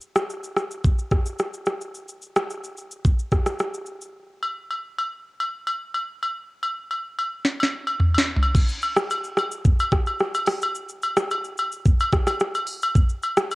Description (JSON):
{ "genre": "afrobeats", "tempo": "109 BPM", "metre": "4/4", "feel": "straight", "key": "none", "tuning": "none", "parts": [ { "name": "afro-pop drum kit", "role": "drums", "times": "0.0-4.1, 7.4-13.6 s", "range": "crash cymbal, hi-hat, kick drum, rim click, shaker, snare drum, toms", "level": "-21 LUFS", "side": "equal", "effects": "cassette tape" }, { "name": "agogo bells", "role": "percussion", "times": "4.4-13.6 s", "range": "none", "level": "-26 LUFS", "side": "left 1 dB", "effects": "none" } ], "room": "moderate spring reverb, RT60 2.0 s", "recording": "home recording on cassette", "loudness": "-22 LUFS", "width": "side -21 dB against mid", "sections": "0.0-8.5 A section; 8.5-13.6 B section", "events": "drum fill 7.4-8.5", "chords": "none" }